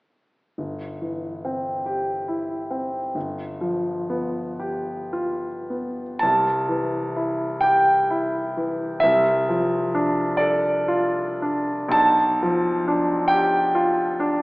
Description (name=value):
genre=classical, romantic nocturne for solo piano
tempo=34-49 BPM (dotted quarters)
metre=12/8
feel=rubato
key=C major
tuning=A4 = 440 Hz
part: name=bright concert grand piano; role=solo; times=0.6-14.4 s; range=G1 to A5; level=-20 LUFS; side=equal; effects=none
room=wet recital hall reverb, RT60 1.6 s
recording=AM radio sound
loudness=-20 LUFS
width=side -23 dB against mid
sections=0.6-6.2 A section; 6.2-14.4 B section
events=none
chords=0.6 C/G; 3.2 G7; 6.2 C; 9.0 Dm7/C; 11.9 G7/B